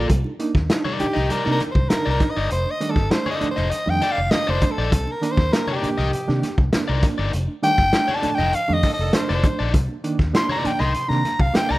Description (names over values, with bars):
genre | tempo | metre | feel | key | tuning
funk | 100 BPM | 4/4 | straight | C dorian | A4 = 440 Hz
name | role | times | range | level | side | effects
biting overdriven guitar | accompaniment | 0.0-11.8 s | Eb4 to Eb5 | -27 LUFS | left 4 dB | none
barky reed electric piano | stabs | 0.0-11.8 s | C3 to A4 | -26 LUFS | right 3 dB | overdrive, fast tremolo
vintage muted fingered electric bass | bass | 0.0-11.8 s | F1 to C3 | -23 LUFS | equal | none
crunchy breakbeat drum kit | drums | 0.1-11.7 s | hi-hat, kick drum, snare drum | -22 LUFS | equal | none
congas | percussion | 0.2-11.8 s | none | -36 LUFS | right 2 dB | none
raspy soprano saxophone | melody | 1.0-11.8 s | G4 to C6 | -23 LUFS | equal | none
warm horn section | second line | 8.8-9.4 s | Eb3 to A4 | -33 LUFS | equal | slapback echo
room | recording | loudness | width
light reverb, small room ambience | rough home demo mix | -18 LUFS | side -18 dB against mid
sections
0.1-11.8 A section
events
soprano saxophone solo 0.1-11.8; band accent 7.3-9.7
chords
0.1 Cm9; 2.5 F13; 4.9 Cm9; 7.3 F13; 9.7 Cm9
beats
| 0.10 0.70 1.31 1.91 | 2.51 3.11 3.72 4.32 | 4.92 5.53 6.13 6.73 | 7.33 7.94 8.54 9.14 | 9.74 10.35 10.95 11.55